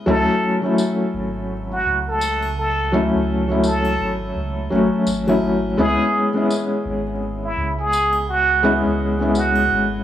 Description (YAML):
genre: trip hop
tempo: 84 BPM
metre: 4/4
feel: swing 59% on 16ths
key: unclear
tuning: A4 = 440 Hz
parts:
  - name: felt-muted upright piano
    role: accompaniment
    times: 0.0-10.0 s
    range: F#3 to F#4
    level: -19 LUFS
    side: left 2 dB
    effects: tremolo, tape echo
  - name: trumpet with plunger mute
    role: melody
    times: 0.1-9.9 s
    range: E4 to A4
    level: -21 LUFS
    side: right 2 dB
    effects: tape echo
  - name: dark detuned saw bass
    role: bass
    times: 0.1-10.0 s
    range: G#1 to C#2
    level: -26 LUFS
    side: right 2 dB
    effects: none
  - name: tambourine and triangle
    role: percussion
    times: 0.8-9.7 s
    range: none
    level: -37 LUFS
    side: left 3 dB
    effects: none
room: moderate spring reverb, RT60 1.2 s, studio reverb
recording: dry, gritty hardware recording, vinyl crackle, studio ambience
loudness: -17 LUFS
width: side -11 dB against mid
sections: 0.0-10.0 A section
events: none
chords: 0.1 F#m9/G#; 5.8 C#m7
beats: | 0.07 0.78 1.50 2.21 | 2.92 3.64 4.35 5.07 | 5.78 6.50 7.21 7.92 | 8.64 9.35